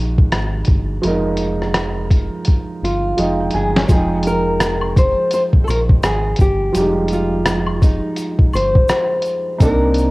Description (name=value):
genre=lo-fi hip hop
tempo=84 BPM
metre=4/4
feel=swing 62% on 16ths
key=F minor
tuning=A4 = 439 Hz
part: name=nylon-string guitar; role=melody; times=0.0-10.1 s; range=Eb4 to C5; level=-20 LUFS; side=left 1 dB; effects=low-pass filter
part: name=felt-muted upright piano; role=accompaniment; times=0.0-10.1 s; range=F3 to Ab5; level=-21 LUFS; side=right 2 dB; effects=cassette tape, low-pass filter
part: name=round analog bass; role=bass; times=0.0-10.1 s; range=F1 to C2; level=-22 LUFS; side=equal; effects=none
part: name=lo-fi sampler-style drum kit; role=drums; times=0.2-10.1 s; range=hi-hat, kick drum, rim click, snare drum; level=-16 LUFS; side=equal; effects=none
part: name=egg shaker and woodblock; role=percussion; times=3.9-10.1 s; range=none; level=-32 LUFS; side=left 2 dB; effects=none
room=small room ambience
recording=home recording on cassette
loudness=-14 LUFS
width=side -22 dB against mid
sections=0.0-3.9 A section; 3.9-10.1 B section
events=drum fill 2.5-3.9; felt piano fill 2.8-3.9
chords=0.0 Fm9; 9.6 Cm9